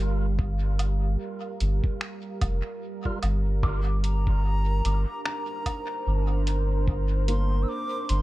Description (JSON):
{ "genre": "ambient dub", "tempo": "74 BPM", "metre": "4/4", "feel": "swing 57% on 16ths", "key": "unclear", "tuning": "A4 = 440 Hz", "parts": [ { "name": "deep dark ambient pad", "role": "sustained chords", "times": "0.0-8.2 s", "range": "G3 to F5", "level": "-34 LUFS", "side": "right 3 dB", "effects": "chorus, built-in reverb" }, { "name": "soft dub sub bass", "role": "bass", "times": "0.0-8.2 s", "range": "F1 to G1", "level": "-24 LUFS", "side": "equal", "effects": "none" }, { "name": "electronic kick drum", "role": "drums", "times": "0.4-7.1 s", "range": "none", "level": "-27 LUFS", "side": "equal", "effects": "none" }, { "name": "lo-fi sampler-style drum kit", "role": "drums", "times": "0.8-8.2 s", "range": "finger snaps, hi-hat, woodblock", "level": "-36 LUFS", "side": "right 2 dB", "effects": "dub echo" }, { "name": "tonewheel organ", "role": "stabs", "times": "3.1-3.2 s", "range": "G3 to Bb4", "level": "-41 LUFS", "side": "right 2 dB", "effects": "overdrive, fast rotary speaker, dub echo" }, { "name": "felt-muted upright piano", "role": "arpeggios", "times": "3.6-8.2 s", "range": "Bb3 to D6", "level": "-38 LUFS", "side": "left 2 dB", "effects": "analog delay" }, { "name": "bright wooden flute", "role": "melody", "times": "4.0-8.2 s", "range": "Bb5 to E6", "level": "-34 LUFS", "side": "left 1 dB", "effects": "dub echo" } ], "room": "digital ambience", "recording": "echo-heavy mix", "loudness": "-24 LUFS", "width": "side -17 dB against mid", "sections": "0.0-8.2 A section", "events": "none", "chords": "0.0 Gm7; 3.6 Bbadd9/G" }